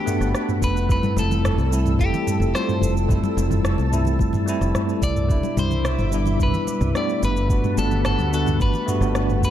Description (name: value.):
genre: sunset chillout.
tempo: 109 BPM.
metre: 4/4.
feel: straight.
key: F lydian.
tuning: A4 = 439 Hz.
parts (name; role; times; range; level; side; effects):
electric guitar at the edge of break-up; melody; 0.0-9.5 s; G4 to D5; -28 LUFS; left 1 dB; tape echo, shimmer reverb.
bell-like tine electric piano; accompaniment; 0.0-9.5 s; B2 to F#5; -25 LUFS; equal; medium stereo tremolo, auto-pan, digital delay, shimmer reverb.
lush unison pad; sustained chords; 0.0-9.5 s; G3 to E6; -31 LUFS; equal; chorus, phaser, shimmer reverb.
smooth R&B drum kit; drums; 0.1-9.5 s; cabasa, rim click, toms; -26 LUFS; equal; none.
modern bright fingered electric bass; bass; 0.2-9.5 s; F1 to D2; -22 LUFS; equal; none.
electronic kick drum; drums; 0.6-9.5 s; none; -22 LUFS; equal; none.
congas; percussion; 1.0-8.8 s; none; -31 LUFS; left 4 dB; none.
room: light reverb, digital ambience.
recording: dark, warm production.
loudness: -18 LUFS.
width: side -11 dB against mid.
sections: 0.0-9.5 A section.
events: none.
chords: 0.0 Gmaj9; 0.9 Fmaj9; 5.3 Cmaj9; 7.2 Gmaj9.